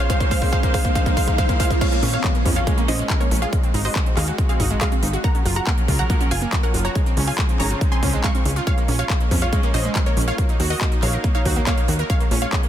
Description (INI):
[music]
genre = uplifting trance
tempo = 140 BPM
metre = 4/4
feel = straight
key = Bb minor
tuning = A4 = 440 Hz
[part]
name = wide unison pluck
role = melody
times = 0.0-12.7 s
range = Gb4 to Db6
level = -26 LUFS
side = equal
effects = sidechain pumping, ping-pong delay
[part]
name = rich chamber string section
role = sustained chords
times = 0.0-12.7 s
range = F2 to C5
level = -32 LUFS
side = equal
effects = sidechain pumping
[part]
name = wide unison pluck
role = arpeggios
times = 0.0-12.7 s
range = Ab3 to Bb4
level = -27 LUFS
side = right 2 dB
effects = sidechain pumping, ping-pong delay
[part]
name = riser and downlifter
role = sound effects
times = 0.0-5.2 s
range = none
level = -30 LUFS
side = right 1 dB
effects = none
[part]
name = big-room dance drum kit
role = drums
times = 0.1-12.7 s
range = crash cymbal, handclaps, hi-hat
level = -28 LUFS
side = equal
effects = none
[part]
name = electronic kick drum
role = drums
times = 0.1-12.6 s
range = none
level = -20 LUFS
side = equal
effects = none
[part]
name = plucky analog bass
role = bass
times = 2.0-12.5 s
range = Gb1 to F2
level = -22 LUFS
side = equal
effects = sidechain pumping
[sound]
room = light reverb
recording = dense, heavily limited modern master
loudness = -17 LUFS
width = side -11 dB against mid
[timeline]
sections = 0.0-1.8 A section; 1.8-12.7 B section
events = build-up 0.0-1.8; drum fill 0.0-1.8; riser 0.0-1.8; drop 1.8-12.7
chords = 0.1 Fm7; 1.8 Bbm7; 3.5 Ab7; 5.2 Gbmaj7; 7.0 Dbmaj7; 8.7 Bbm7; 10.4 Ebm; 12.1 Bbm7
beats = | 0.10 0.53 0.95 1.38 | 1.81 2.24 2.67 3.10 | 3.53 3.96 4.38 4.81 | 5.24 5.67 6.10 6.53 | 6.96 7.38 7.81 8.24 | 8.67 9.10 9.53 9.96 | 10.38 10.81 11.24 11.67 | 12.10 12.53